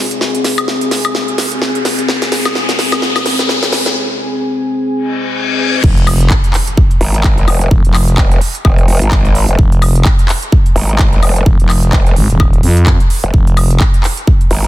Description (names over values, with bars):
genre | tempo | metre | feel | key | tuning
bass house | 128 BPM | 4/4 | swing 57% on 16ths | F minor | A4 = 438 Hz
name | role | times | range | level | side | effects
dark analog pad | sustained chords | 0.0-14.7 s | C4 to Ab5 | -18 LUFS | left 2 dB | chorus, sidechain pumping
riser, reverse cymbal and impact | sound effects | 0.1-7.7 s | none | -20 LUFS | left 2 dB | none
big-room dance drum kit | drums | 0.1-14.7 s | crash cymbal, handclaps, hi-hat, snare drum, woodblock | -17 LUFS | equal | soft clipping on snare, high-pass filter on snare, small room ambience, high-pass filter on hats, high-pass filter on perc, high-pass filter on cymbals
growling FM bass | bass | 5.8-13.8 s | Eb1 to F2 | -11 LUFS | equal | overdrive, sidechain pumping
electronic kick drum | drums | 5.8-14.4 s | none | -10 LUFS | equal | small room ambience
growl bass | bass | 7.0-14.7 s | F1 to Ab1 | -13 LUFS | equal | chorus, sidechain pumping
room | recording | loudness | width
light reverb | dense, heavily limited modern master | -10 LUFS | side -15 dB against mid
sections
0.0-5.8 A section; 5.8-14.7 B section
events
build-up 0.0-5.8; drum fill 0.0-4.0; riser 0.1-4.0; break 4.0-5.8; reverse cymbal 5.1-5.8; drop 5.8-14.7; impact 5.8-7.7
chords
0.0 Fm (rootless); 5.8 Fm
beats
| 0.21 0.68 1.15 1.62 | 2.09 2.56 3.02 3.49 | 3.96 4.43 4.90 5.37 | 5.84 6.30 6.77 7.24 | 7.71 8.18 8.65 9.12 | 9.59 10.05 10.52 10.99 | 11.46 11.93 12.40 12.87 | 13.34 13.80 14.27